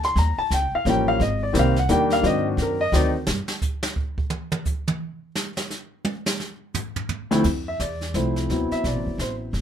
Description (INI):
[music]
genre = jazz piano trio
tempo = 173 BPM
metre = 3/4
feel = swing 62% on 8ths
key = unclear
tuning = A4 = 436 Hz
[part]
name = dark grand piano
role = melody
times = 0.0-3.1, 7.3-9.5 s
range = D2 to C6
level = -22 LUFS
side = left 1 dB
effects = none
[part]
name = upright bass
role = bass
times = 0.0-3.4, 7.4-9.6 s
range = F#1 to Ab2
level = -24 LUFS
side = equal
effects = none
[part]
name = jazz brush drum kit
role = drums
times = 0.0-9.6 s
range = brushed snare drum, crash cymbal, hi-hat, kick drum, snare drum, toms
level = -27 LUFS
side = right 2 dB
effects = none
[sound]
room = light reverb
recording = minimal, uncompressed stereo recording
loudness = -21 LUFS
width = side -9 dB against mid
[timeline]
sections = 0.0-7.5 A section; 7.5-9.6 B section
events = grand piano solo 0.0-7.5; drum solo 3.3-7.5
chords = 0.2 Eb9; 1.2 Abmaj7; 2.2 Ab7#11; 3.3 N.C.; 7.5 Dm9; 8.5 D13